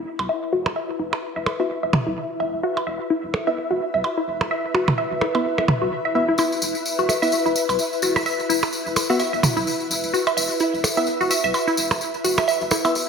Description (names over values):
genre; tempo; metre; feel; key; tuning
minimal techno; 128 BPM; 4/4; swing 57% on 16ths; unclear; A4 = 441 Hz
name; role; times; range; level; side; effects
punchy sub bass; bass; 0.0-12.7 s; E1 to B1; -37 LUFS; equal; tube saturation, high-pass filter
ethereal airy pad; texture; 0.1-13.1 s; E4 to E5; -26 LUFS; left 2 dB; ensemble chorus, built-in reverb, phaser
electronic percussion blips and toms; percussion; 0.2-12.9 s; none; -24 LUFS; right 2 dB; studio reverb, analog delay
resonant blip pluck; riff; 0.3-12.8 s; E4 to E5; -24 LUFS; equal; phaser, diffuse ambient delay
filtered dub chord stab; stabs; 1.6-12.9 s; B3 to E5; -26 LUFS; right 1 dB; chorus, analog delay
tambourine; percussion; 6.4-13.1 s; none; -26 LUFS; left 2 dB; none
room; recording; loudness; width
wet plate reverb, RT60 1.5 s; dreamy mix soaked in reverb; -19 LUFS; side -6 dB against mid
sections
0.0-13.1 A section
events
filter sweep on synth arpeggio sound 0.0-13.1; filter sweep on synth stab 0.0-13.1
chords
0.0 E5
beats
0.29 | 0.76 1.23 1.70 2.17 | 2.64 3.10 3.57 4.04 | 4.51 4.98 5.45 5.92 | 6.39 6.86 7.32 7.79 | 8.26 8.73 9.20 9.67 | 10.14 10.61 11.07 11.54 | 12.01 12.48 12.95